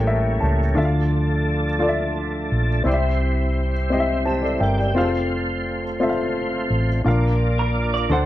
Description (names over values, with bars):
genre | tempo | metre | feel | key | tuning
slow gospel | 57 BPM (dotted quarters) | 6/8 | straight | F major | A4 = 440 Hz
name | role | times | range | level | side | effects
warm baby grand piano | accompaniment | 0.0-8.3 s | A2 to A5 | -23 LUFS | left 2 dB | none
tonewheel organ | sustained chords | 0.0-8.3 s | F3 to G5 | -25 LUFS | right 1 dB | fast rotary speaker, chorus vibrato
hollow-body short-scale fingered electric bass | bass | 0.0-8.3 s | F1 to D2 | -22 LUFS | equal | none
semi-hollow electric guitar | second line | 7.6-8.3 s | Bb4 to D5 | -26 LUFS | right 6 dB | none
room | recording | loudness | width
light reverb, digital ambience | dark, warm production | -18 LUFS | side -14 dB against mid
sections
0.0-8.3 A section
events
grand piano fill 0.0-0.8, 3.9-5.0; tonewheel organ fill 3.9-5.0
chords
0.0 A7b9; 0.8 Dm; 2.9 C; 5.0 F; 7.1 Bb